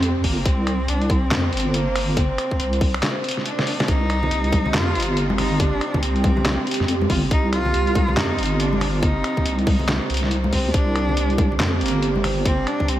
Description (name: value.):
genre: deep dubstep.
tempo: 140 BPM.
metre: 4/4.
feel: swing 61% on 16ths, half-time.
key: C minor.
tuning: A4 = 440 Hz.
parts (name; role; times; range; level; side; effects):
warm cello; melody; 0.0-13.0 s; Bb3 to F4; -26 LUFS; left 1 dB; dub echo.
dark analog pad; sustained chords; 0.0-13.0 s; C4 to C5; -27 LUFS; right 4 dB; chorus, phaser.
deep soft wobble bass; bass; 0.0-13.0 s; G1 to F2; -22 LUFS; equal; chorus.
trip hop sampler-style drum kit; drums; 0.0-13.0 s; finger snaps, handclaps, hi-hat, snare drum; -26 LUFS; equal; none.
electronic kick drum; drums; 0.2-12.9 s; none; -21 LUFS; equal; overdrive.
congas; percussion; 4.2-12.9 s; none; -28 LUFS; left 1 dB; none.
room: moderate huge ambient reverb, RT60 8.6 s.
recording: dreamy mix soaked in reverb, vinyl crackle.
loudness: -18 LUFS.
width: side -13 dB against mid.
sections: 0.0-13.0 A section.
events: drum fill 3.6-3.9.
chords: 0.0 C5.